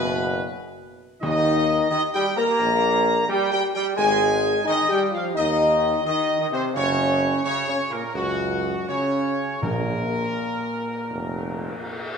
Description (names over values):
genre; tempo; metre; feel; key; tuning
classical; 86 BPM; 4/4; uneven beats; unclear; A4 = 439 Hz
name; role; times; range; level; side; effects
warm trumpet section; melody; 0.0-12.2 s; Gb4 to Bb5; -24 LUFS; equal; none
dark French horn section; sustained chords; 0.0-12.2 s; Gb3 to Bb4; -26 LUFS; left 4 dB; none
warm trombone section; sustained chords; 0.0-12.2 s; Gb2 to Bb3; -28 LUFS; right 3 dB; none
clear tuba; bass; 0.0-11.7 s; F1 to Eb2; -29 LUFS; right 2 dB; none
timpani; percussion; 1.2-2.2, 9.6-10.7 s; Bb2 to Eb3; -30 LUFS; equal; none
room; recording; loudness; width
wet scoring stage reverb, RT60 1.7 s; minimal, uncompressed stereo recording; -20 LUFS; side -6 dB against mid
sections
0.0-12.2 A section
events
none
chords
0.0 B5; 1.2 Eb5; 4.0 Ab5; 6.8 Gb5; 9.6 Bb5